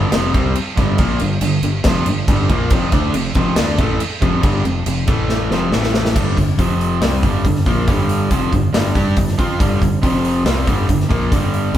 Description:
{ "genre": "hard rock", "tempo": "139 BPM", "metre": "4/4", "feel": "straight", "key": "unclear", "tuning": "A4 = 441 Hz", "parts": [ { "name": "overdriven electric guitar", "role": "riff", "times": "0.0-11.8 s", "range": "F2 to G4", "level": "-22 LUFS", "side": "right 5 dB", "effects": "spring reverb" }, { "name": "overdriven semi-hollow guitar", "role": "riff", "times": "0.0-11.8 s", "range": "F2 to G4", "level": "-20 LUFS", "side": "left 4 dB", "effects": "none" }, { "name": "growling fingered electric bass", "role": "bass", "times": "0.0-11.8 s", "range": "F1 to G2", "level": "-21 LUFS", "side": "equal", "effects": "overdrive" }, { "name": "big rock drum kit", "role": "drums", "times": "0.1-11.8 s", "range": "crash cymbal, hi-hat, kick drum, snare drum", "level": "-18 LUFS", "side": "equal", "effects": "none" } ], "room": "moderate stone room reverb, RT60 1.2 s", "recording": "band playing live in one room", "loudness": "-14 LUFS", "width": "side -11 dB against mid", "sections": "0.0-6.2 A section; 6.2-11.8 B section", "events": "drum fill 5.3-6.2", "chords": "0.0 G5; 2.7 F5; 5.1 A5; 5.5 F5; 5.7 A5; 6.2 G5; 6.6 F5; 7.0 G5; 10.0 F5; 10.5 G5", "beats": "0.12 0.55 | 0.99 1.42 1.85 2.28 | 2.71 3.14 3.57 4.00 | 4.43 4.86 5.29 5.72 | 6.16 6.58 7.02 7.45 | 7.88 8.31 8.74 9.17 | 9.60 10.03 10.46 10.89 | 11.31 11.74" }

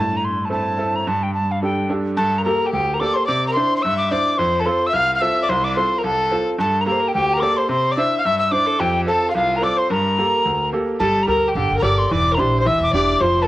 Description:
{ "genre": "celtic folk, Celtic reel", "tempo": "218 BPM", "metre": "4/4", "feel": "swing 54% on 8ths", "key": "G dorian", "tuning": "A4 = 439 Hz", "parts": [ { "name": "mellow wooden whistle", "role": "melody", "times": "0.0-13.5 s", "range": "F5 to F6", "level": "-20 LUFS", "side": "equal", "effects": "cassette tape" }, { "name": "bright concert grand piano", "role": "accompaniment", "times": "0.0-13.5 s", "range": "C2 to C5", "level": "-22 LUFS", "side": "right 2 dB", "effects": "cassette tape" }, { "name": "rich cello", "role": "drone", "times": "0.0-2.2 s", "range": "G2", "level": "-30 LUFS", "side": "left 1 dB", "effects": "stereo widening, cassette tape" }, { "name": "dark fiddle", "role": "second line", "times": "2.2-13.5 s", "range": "F4 to F5", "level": "-22 LUFS", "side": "left 3 dB", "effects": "cassette tape" }, { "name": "upright bass", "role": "bass", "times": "11.0-13.5 s", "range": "E1 to D2", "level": "-22 LUFS", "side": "equal", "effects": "none" } ], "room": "light reverb", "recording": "home recording on cassette", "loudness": "-16 LUFS", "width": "side -16 dB against mid", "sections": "0.0-2.2 A section; 2.2-11.0 B section; 11.0-13.5 B section", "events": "none", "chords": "0.0 Am; 1.1 Gsus2; 2.2 Gmadd9; 3.3 Cadd9; 4.4 F; 6.6 Gmadd9; 7.7 Cadd9; 8.8 F; 9.9 Gmadd9; 12.1 Em7b5", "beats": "0.23 0.51 0.79 | 1.07 1.34 1.62 1.90 | 2.18 2.45 2.73 3.01 | 3.28 3.56 3.83 4.11 | 4.39 4.66 4.94 5.21 | 5.49 5.77 6.04 6.32 | 6.59 6.87 7.15 7.42 | 7.70 7.97 8.25 8.52 | 8.80 9.08 9.35 9.63 | 9.90 10.18 10.45 10.73 | 11.00 11.28 11.55 11.83 | 12.10 12.38 12.65 12.93 | 13.21" }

